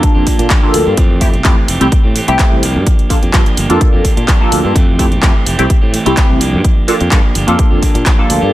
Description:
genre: filtered disco house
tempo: 127 BPM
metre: 4/4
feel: straight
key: G dorian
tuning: A4 = 440 Hz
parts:
  - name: funky polysynth comp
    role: accompaniment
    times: 0.0-8.5 s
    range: A3 to A4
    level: -16 LUFS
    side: equal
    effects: chorus, phaser, sidechain pumping, low-pass filter
  - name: electric guitar at the edge of break-up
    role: riff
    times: 0.0-8.5 s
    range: E3 to G4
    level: -20 LUFS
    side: right 3 dB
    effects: vintage 12-bit sampler grit, sidechain pumping, low-pass filter
  - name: electronic kick drum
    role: drums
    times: 0.0-8.2 s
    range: none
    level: -11 LUFS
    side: equal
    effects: overdrive
  - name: house drum kit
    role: drums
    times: 0.0-8.4 s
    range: handclaps, hi-hat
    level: -19 LUFS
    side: equal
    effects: overdrive
  - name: modern bright fingered electric bass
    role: bass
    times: 0.2-8.5 s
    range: F1 to Bb2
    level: -16 LUFS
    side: equal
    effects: tube saturation, sidechain pumping, low-pass filter
room: digital ambience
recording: none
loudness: -9 LUFS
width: side -15 dB against mid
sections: 0.0-8.5 A section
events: none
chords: 0.0 Gm7; 1.0 Fmaj9; 2.6 Gm7; 4.8 Fmaj9; 6.4 Gm7

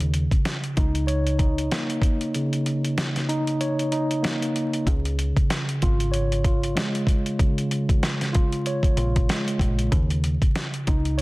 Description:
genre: hip hop, boom-bap hip-hop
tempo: 95 BPM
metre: 4/4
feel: swing 58% on 16ths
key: unclear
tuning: A4 = 440 Hz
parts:
  - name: mellow tine electric piano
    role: accompaniment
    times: 0.0-11.2 s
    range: Db3 to Db5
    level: -25 LUFS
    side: equal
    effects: medium stereo tremolo, high-pass filter, low-pass filter
  - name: deep dub fingered electric bass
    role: bass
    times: 0.0-11.2 s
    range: Ab1 to Eb2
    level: -24 LUFS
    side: equal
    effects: none
  - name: boom bap sampler-style drum kit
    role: drums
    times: 0.0-11.2 s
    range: hi-hat, kick drum, snare drum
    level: -23 LUFS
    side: equal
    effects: none
room: little or no reverb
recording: dense, heavily limited modern master, vinyl crackle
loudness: -21 LUFS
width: side -21 dB against mid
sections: 0.0-11.2 A section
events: kick muted 2.3-4.9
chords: 0.0 Eb5; 4.9 Db; 9.9 Eb5

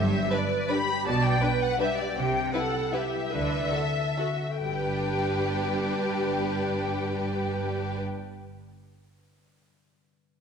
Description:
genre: classical, orchestral ballroom waltz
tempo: 130-175 BPM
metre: 3/4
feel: rubato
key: G major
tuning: A4 = 439 Hz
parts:
  - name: warm symphonic violin section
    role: melody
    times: 0.0-8.0 s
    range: D5 to B5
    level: -31 LUFS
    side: left 5 dB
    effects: none
  - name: clear symphonic viola section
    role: accompaniment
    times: 0.0-8.0 s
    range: G3 to D5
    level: -32 LUFS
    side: right 2 dB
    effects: none
  - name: concert harp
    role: arpeggios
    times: 0.0-8.5 s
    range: G2 to D5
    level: -34 LUFS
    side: left 5 dB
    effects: none
  - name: clear symphonic cello section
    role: bass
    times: 0.0-8.0 s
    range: G2 to D3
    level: -34 LUFS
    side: right 3 dB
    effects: none
  - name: warm symphonic double bass section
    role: bass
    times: 0.0-8.0 s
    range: G1 to D2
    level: -34 LUFS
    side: right 5 dB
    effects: none
  - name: warm symphonic violin section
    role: second line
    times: 0.3-8.0 s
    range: D4 to B4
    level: -32 LUFS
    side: left 1 dB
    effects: none
room: wet scoring stage reverb, RT60 1.6 s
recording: none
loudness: -25 LUFS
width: side -6 dB against mid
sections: 0.0-4.6 A section; 4.6-7.2 B section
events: slowing down 1.6-4.6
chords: 0.0 G; 1.1 G/B; 2.2 Cmaj7; 3.3 D7; 4.6 G

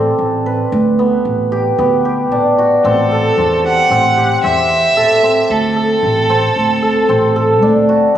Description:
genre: contemporary instrumental, chamber music in an uneven meter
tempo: 113 BPM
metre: 5/4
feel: straight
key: unclear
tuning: A4 = 440 Hz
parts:
  - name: cimbalom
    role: arpeggios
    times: 0.0-8.2 s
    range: B3 to B4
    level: -13 LUFS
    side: equal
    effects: none
  - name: upright bass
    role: bass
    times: 0.0-8.2 s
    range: A1 to E2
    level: -18 LUFS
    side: right 1 dB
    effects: none
  - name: rich violin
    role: melody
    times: 2.9-7.6 s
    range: A4 to F#5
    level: -15 LUFS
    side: right 3 dB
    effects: none
room: moderate concert hall reverb, RT60 2.5 s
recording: recorded on a phone in the room, studio reverb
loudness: -11 LUFS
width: side -10 dB against mid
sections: 0.0-8.2 A section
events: none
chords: 0.2 Gmaj7/A; 2.8 Am7; 5.5 D7(no3)

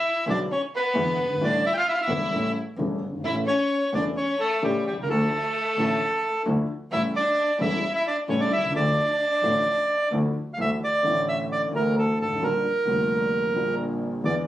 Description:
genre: tango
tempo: 131 BPM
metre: 4/4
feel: rubato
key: D harmonic minor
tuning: A4 = 444 Hz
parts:
  - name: bandoneon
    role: melody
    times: 0.0-14.4 s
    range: G4 to G5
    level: -24 LUFS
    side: right 1 dB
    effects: none
  - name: warm studio violin section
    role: second line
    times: 0.0-10.1 s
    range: G3 to G4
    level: -30 LUFS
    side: left 1 dB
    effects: none
  - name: warm concert grand piano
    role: accompaniment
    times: 0.3-14.4 s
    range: E1 to F4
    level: -29 LUFS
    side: left 2 dB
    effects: none
  - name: rich double bass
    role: bass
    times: 0.3-14.4 s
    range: E1 to E2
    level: -29 LUFS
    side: equal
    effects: none
room: moderate studio reverb, RT60 0.5 s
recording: recorded on a phone in the room, studio ambience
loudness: -22 LUFS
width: side -13 dB against mid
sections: 0.0-10.6 A section; 10.6-14.5 A section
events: none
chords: 0.0 E7; 1.4 A7sus4; 2.3 A7; 3.2 A; 5.1 Dmadd9; 6.9 A7; 8.7 Dmadd9; 10.6 Dsus2; 12.4 Bb6

